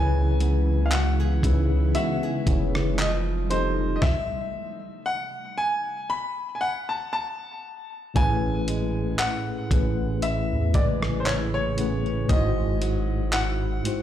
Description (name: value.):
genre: contemporary R&B.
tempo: 58 BPM.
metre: 4/4.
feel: swing 54% on 16ths.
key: A major.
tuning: A4 = 440 Hz.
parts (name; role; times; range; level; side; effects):
clear grand piano; melody; 0.0-14.0 s; C5 to B5; -29 LUFS; left 1 dB; tape echo.
mellow tine electric piano; accompaniment; 0.0-14.0 s; G#2 to C#5; -28 LUFS; left 1 dB; medium stereo tremolo.
ethereal airy pad; sustained chords; 0.0-4.0 s; C3 to E4; -33 LUFS; equal; ensemble chorus, built-in reverb.
flamenco guitar; arpeggios; 0.0-14.0 s; G#2 to G#4; -33 LUFS; right 4 dB; tape echo.
long sustained 808-style bass; bass; 0.0-13.8 s; F1 to E2; -25 LUFS; equal; none.
dusty soul sampler-style drum kit; drums; 0.4-14.0 s; handclaps, hi-hat, kick drum, rim click, snare drum; -25 LUFS; equal; none.
room: light reverb.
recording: played on a big sound system in a bare room, large studio reverb.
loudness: -22 LUFS.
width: side -11 dB against mid.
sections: 0.0-8.2 A section; 8.2-14.0 A section.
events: stop 4.0-8.2.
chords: 0.0 C#m7; 3.0 F9; 4.0 N.C.; 8.2 Amaj7; 12.3 G#7b13.